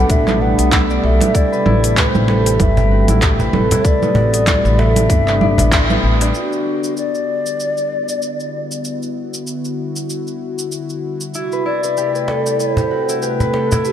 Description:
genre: organic downtempo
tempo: 96 BPM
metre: 4/4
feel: swing 57% on 16ths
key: E minor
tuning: A4 = 443 Hz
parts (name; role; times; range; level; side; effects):
- mellow hollow low ney; melody; 0.0-13.9 s; F#4 to F#5; -21 LUFS; left 2 dB; digital delay
- warm analog pad; sustained chords; 0.0-13.9 s; B2 to F#5; -23 LUFS; left 1 dB; chorus, vintage 12-bit sampler grit, sidechain pumping
- concert harp; arpeggios; 0.0-13.9 s; B3 to E5; -21 LUFS; right 1 dB; digital delay
- upright bass; bass; 0.0-6.3 s; G1 to B1; -16 LUFS; equal; sidechain pumping
- electronic kick drum; drums; 0.1-5.9 s; none; -16 LUFS; equal; none
- organic electronic drum kit; drums; 0.1-13.9 s; congas, handclaps, hi-hat, shaker; -20 LUFS; right 2 dB; none
- cajon; percussion; 1.2-6.3, 12.3-13.8 s; none; -20 LUFS; right 1 dB; none
room: moderate lush hall reverb, RT60 2.7 s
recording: dark, warm production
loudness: -14 LUFS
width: side -10 dB against mid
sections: 0.0-6.3 A section; 6.3-13.9 B section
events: band accent 5.7-6.0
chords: 0.0 Gmaj9; 1.3 Am7; 6.3 Em9; 11.3 C6

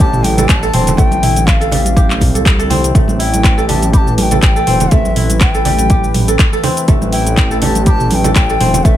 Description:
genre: afro house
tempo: 122 BPM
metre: 4/4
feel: swing 55% on 16ths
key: A minor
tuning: A4 = 440 Hz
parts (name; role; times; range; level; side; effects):
- bright reedy bansuri; melody; 0.0-9.0 s; E5 to B5; -19 LUFS; left 3 dB; dub echo
- warm analog pad; sustained chords; 0.0-9.0 s; D3 to B4; -23 LUFS; left 2 dB; chorus, sidechain pumping
- kora; arpeggios; 0.0-9.0 s; G3 to A4; -19 LUFS; right 1 dB; sidechain pumping, dub echo
- dark detuned saw bass; bass; 0.0-9.0 s; E1 to C2; -16 LUFS; equal; sidechain pumping
- afro-pop drum kit; drums; 0.0-9.0 s; cabasa, handclaps, hi-hat, toms; -18 LUFS; right 1 dB; none
- electronic kick drum; drums; 0.0-9.0 s; none; -11 LUFS; equal; none
- congas; percussion; 0.2-9.0 s; none; -20 LUFS; right 4 dB; none
room: little or no reverb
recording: none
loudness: -10 LUFS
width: side -12 dB against mid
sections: 0.0-9.0 A section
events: none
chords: 0.0 Dm7; 3.0 Am9

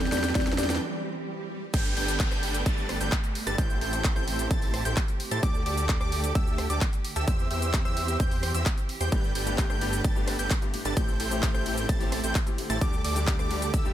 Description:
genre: EDM, festival progressive house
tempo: 130 BPM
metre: 4/4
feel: straight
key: G major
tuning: A4 = 441 Hz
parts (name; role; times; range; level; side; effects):
- buzzing marimba with soft mallets; melody; 0.0-0.7 s; D5; -36 LUFS; left 4 dB; vintage 12-bit sampler grit, ping-pong delay
- rich studio string section; sustained chords; 0.0-13.9 s; D3 to G4; -39 LUFS; right 3 dB; sidechain pumping
- plucky unison lead; arpeggios; 0.0-13.9 s; D6 to A6; -35 LUFS; equal; sidechain pumping, ping-pong delay
- dense compressed supersaw; riff; 0.0-13.9 s; D4 to A5; -34 LUFS; right 1 dB; sidechain pumping, ping-pong delay
- wide detuned saw bass; bass; 0.0-13.9 s; G1 to A2; -31 LUFS; equal; chorus, sidechain pumping
- big-room dance drum kit; drums; 0.0-13.9 s; crash cymbal, handclaps, hi-hat, ride cymbal, rim click, shaker, snare drum; -33 LUFS; equal; overdrive
- riser, swell and downlifter; sound effects; 0.0-5.4 s; none; -37 LUFS; right 2 dB; none
- warm concert grand piano; accompaniment; 0.1-0.7, 9.1-13.9 s; G2 to G4; -36 LUFS; left 6 dB; sidechain pumping, ping-pong delay
- electronic kick drum; drums; 0.4-13.8 s; none; -26 LUFS; equal; overdrive
room: little or no reverb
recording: none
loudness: -24 LUFS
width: side -12 dB against mid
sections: 0.0-1.7 A section; 1.7-13.9 B section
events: build-up 0.0-1.7; drum fill 0.0-0.8; riser 0.0-0.8; break 0.8-1.7; swell 0.8-1.7; drop 1.7-13.9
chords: 0.0 C/E; 1.7 Gadd9; 3.6 Am7; 5.4 Dsus4; 7.3 C/E; 9.1 Gadd9; 11.0 Am7; 12.8 Dsus4

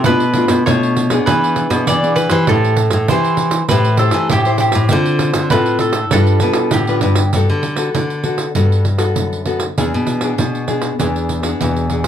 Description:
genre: samba and choro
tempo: 99 BPM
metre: 4/4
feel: straight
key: G major from 7.3 s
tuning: A4 = 440 Hz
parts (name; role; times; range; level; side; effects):
- mandolin; second line; 0.0-7.3 s; G4 to D5; -18 LUFS; right 2 dB; none
- nylon-string guitar; accompaniment; 0.0-12.1 s; A2 to C5; -19 LUFS; left 4 dB; none
- pandeiro; percussion; 0.0-12.1 s; none; -20 LUFS; right 5 dB; none
- nylon-string guitar; bass; 0.1-12.1 s; E2 to E3; -17 LUFS; equal; none
room: light reverb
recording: none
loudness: -13 LUFS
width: side -9 dB against mid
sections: 0.0-7.3 A section; 7.3-12.1 B section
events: none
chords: 0.0 Bm7b5; 1.3 E7; 2.5 Am7; 4.9 Dm7; 6.1 G7; 7.3 Gmaj9; 9.8 E7

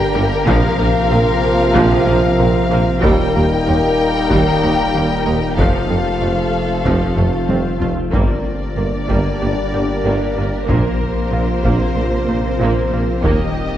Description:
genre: cinematic, hybrid orchestral and electronic film score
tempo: 94 BPM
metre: 4/4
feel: straight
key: G minor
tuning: A4 = 440 Hz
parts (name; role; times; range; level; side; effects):
- warm studio violin section; melody; 0.0-13.8 s; C5 to G5; -24 LUFS; left 5 dB; none
- dark symphonic violin section; second line; 0.0-13.8 s; G4 to Bb4; -25 LUFS; left 3 dB; none
- granular cloud pad; sustained chords; 0.0-13.8 s; Bb2 to Bb5; -25 LUFS; right 1 dB; built-in reverb
- mellow French horn section; sustained chords; 0.0-13.8 s; Bb2 to F4; -24 LUFS; left 2 dB; none
- mellow trombone section; sustained chords; 0.0-13.8 s; Bb2 to G3; -24 LUFS; right 1 dB; none
- analog pluck; arpeggios; 0.0-13.4 s; Eb3 to C5; -28 LUFS; right 3 dB; none
- saturated sub bass; bass; 0.0-13.8 s; Eb1 to Bb1; -24 LUFS; left 1 dB; none
- rich symphonic viola section; accompaniment; 0.1-13.5 s; F3 to Eb4; -25 LUFS; right 1 dB; none
- rich symphonic cello section; bass; 0.1-13.3 s; Eb2 to Bb2; -24 LUFS; right 1 dB; none
- rich symphonic double bass section; bass; 0.2-13.3 s; F1 to Eb2; -23 LUFS; right 2 dB; none
- warm tuba; bass; 0.2-13.4 s; F1 to Eb2; -23 LUFS; right 2 dB; none
- taiko ensemble; drums; 0.5-13.8 s; none; -22 LUFS; equal; none
room: wet scoring stage reverb, RT60 1.7 s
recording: worn, warbling old tape, cassette tape, warbly pitch drift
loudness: -14 LUFS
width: side -11 dB against mid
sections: 0.0-8.1 A section; 8.1-13.8 B section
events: drum fill 7.2-8.1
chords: 0.5 Bbsus2; 3.0 Eb; 5.6 F; 8.1 Gm; 10.7 Bbsus2; 13.2 Eb

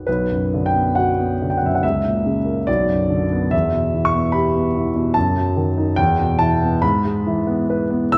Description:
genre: classical, romantic character piece for solo piano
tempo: 64-76 BPM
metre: 2/4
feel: rubato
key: B minor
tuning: A4 = 439 Hz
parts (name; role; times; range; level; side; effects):
- warm concert grand piano; solo; 0.0-8.2 s; B1 to E6; -19 LUFS; equal; none
room: wet recital hall reverb, RT60 1.7 s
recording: none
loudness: -19 LUFS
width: mono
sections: 0.1-8.2 A section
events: none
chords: 0.1 Bm; 1.8 A#dim/C#; 2.7 Bm; 3.5 Em; 5.2 D#dim/F#; 6.0 Em; 6.8 E/G#

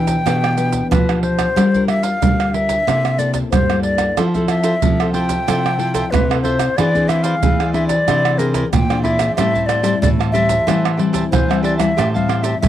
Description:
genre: samba and choro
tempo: 92 BPM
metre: 4/4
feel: straight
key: A minor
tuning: A4 = 440 Hz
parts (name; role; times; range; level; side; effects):
- wooden flute; melody; 0.0-12.7 s; Bb4 to G5; -19 LUFS; left 1 dB; none
- nylon-string guitar; accompaniment; 0.0-12.7 s; G2 to B4; -23 LUFS; left 6 dB; none
- nylon-string guitar; bass; 0.0-12.7 s; A2 to G3; -19 LUFS; equal; none
- maracas, surdo, pandeiro and tamborim; percussion; 0.1-12.7 s; none; -20 LUFS; right 5 dB; none
- cavaquinho; accompaniment; 4.2-12.5 s; E4 to A5; -25 LUFS; right 3 dB; none
room: light reverb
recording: dry, close 1970s-style studio recording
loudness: -14 LUFS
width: side -11 dB against mid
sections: 0.0-12.7 A section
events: none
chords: 0.0 Em7; 1.6 Gm7; 2.9 C6; 4.2 Fmaj7; 6.8 Eaug7; 9.4 Am7

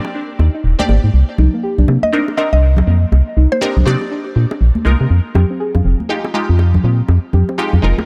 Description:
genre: deep house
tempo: 121 BPM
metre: 4/4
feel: swing 61% on 16ths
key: C minor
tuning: A4 = 442 Hz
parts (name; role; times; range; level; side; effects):
- filtered dub chord stab; stabs; 0.0-8.1 s; Ab3 to D5; -25 LUFS; equal; phaser, analog delay
- bongos and congas; percussion; 0.0-8.1 s; none; -24 LUFS; equal; none
- soft round pluck; arpeggios; 0.1-7.9 s; Bb3 to Ab4; -25 LUFS; equal; subtle chorus, cassette tape, tape echo
- organ-like FM bass; bass; 0.4-7.9 s; Eb1 to C3; -13 LUFS; equal; none
- mallet-like synth pluck; melody; 2.0-4.6 s; G4 to Eb5; -22 LUFS; equal; chorus, phaser, tape echo
room: little or no reverb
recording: none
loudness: -14 LUFS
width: mono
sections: 0.0-8.1 A section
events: none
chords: 0.0 Abmaj9#11; 1.1 Cm9; 5.1 Fm9

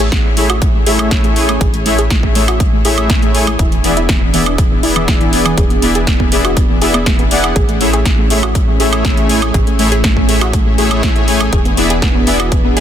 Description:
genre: progressive house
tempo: 121 BPM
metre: 4/4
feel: straight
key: A major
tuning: A4 = 438 Hz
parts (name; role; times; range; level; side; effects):
- warm analog pad; sustained chords; 0.0-12.8 s; E3 to G#4; -22 LUFS; right 1 dB; chorus, sidechain pumping
- wide unison pluck; arpeggios; 0.0-12.8 s; E3 to G#4; -20 LUFS; equal; sidechain pumping, ping-pong delay
- tight sequencer bass; bass; 0.0-12.8 s; E1 to A1; -19 LUFS; equal; sidechain pumping
- deep house drum kit; drums; 0.0-12.8 s; hi-hat, snare drum, woodblock; -18 LUFS; right 1 dB; overdrive, sidechain pumping on hats, sidechain pumping on cymbals, sidechain pumping on perc
- electronic kick drum; drums; 0.1-12.6 s; none; -14 LUFS; equal; none
- soft supersaw; stabs; 0.4-12.8 s; A3 to G#5; -16 LUFS; left 2 dB; sidechain pumping, ping-pong delay
room: digital ambience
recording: dense, heavily limited modern master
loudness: -10 LUFS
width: side -10 dB against mid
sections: 0.0-12.8 A section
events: filter sweep on synth pluck 0.0-12.8; filter sweep on analog synth pad 0.0-12.8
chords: 0.0 Amaj7; 3.6 E7; 7.6 Amaj7; 11.5 E7

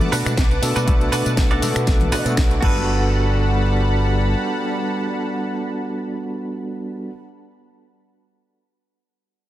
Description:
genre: nu-disco, nu disco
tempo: 120 BPM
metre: 4/4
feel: swing 54% on 16ths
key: G major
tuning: A4 = 440 Hz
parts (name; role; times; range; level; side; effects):
- overdriven tine electric piano; accompaniment; 0.0-7.1 s; G3 to D5; -24 LUFS; right 1 dB; fast tremolo, sidechain pumping, analog delay
- lush unison pad; sustained chords; 0.0-7.1 s; G3 to D6; -27 LUFS; equal; chorus, sidechain pumping
- house drum kit; drums; 0.0-2.7 s; crash cymbal, finger snaps, hi-hat, snare drum, tambourine; -27 LUFS; left 1 dB; soft clipping on snare
- congas; percussion; 0.0-2.9 s; none; -30 LUFS; left 2 dB; none
- direct-recorded clean electric guitar; riff; 0.1-7.1 s; D4 to D5; -28 LUFS; right 3 dB; lush chorus, analog delay
- fingered electric bass with an envelope filter; bass; 0.1-4.3 s; G1 to B2; -20 LUFS; equal; sidechain pumping
- electronic kick drum; drums; 0.4-2.7 s; none; -18 LUFS; equal; none
room: light reverb, digital ambience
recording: dense, heavily limited modern master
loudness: -18 LUFS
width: side -14 dB against mid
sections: 0.0-2.9 A section; 2.9-6.9 B section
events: drop 0.0-2.9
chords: 0.0 Bm7; 2.6 Gmaj9

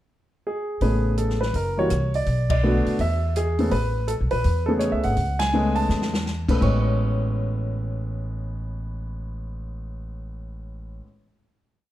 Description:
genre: jazz piano trio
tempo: 165 BPM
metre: 4/4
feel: swing 64% on 8ths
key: A major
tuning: A4 = 440 Hz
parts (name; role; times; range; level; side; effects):
- warm concert grand piano; melody; 0.5-11.0 s; A2 to C#6; -24 LUFS; equal; none
- upright bass; bass; 0.8-11.0 s; F#1 to E2; -25 LUFS; equal; none
- open jazz drum kit; drums; 0.8-6.7 s; crash cymbal, hi-hat, kick drum, ride cymbal, rim click, snare drum; -30 LUFS; left 1 dB; none
room: moderate large studio reverb, RT60 1.1 s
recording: dark, warm production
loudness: -21 LUFS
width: side -14 dB against mid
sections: 0.0-0.8 pickup bar; 0.8-6.6 A section; 6.6-9.5 final chord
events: band accent 2.5, 5.4; drum fill 5.9-6.3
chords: 0.0 N.C.; 0.8 Amaj9; 1.5 F#; 2.3 Bm7; 3.0 E; 3.7 Amaj9

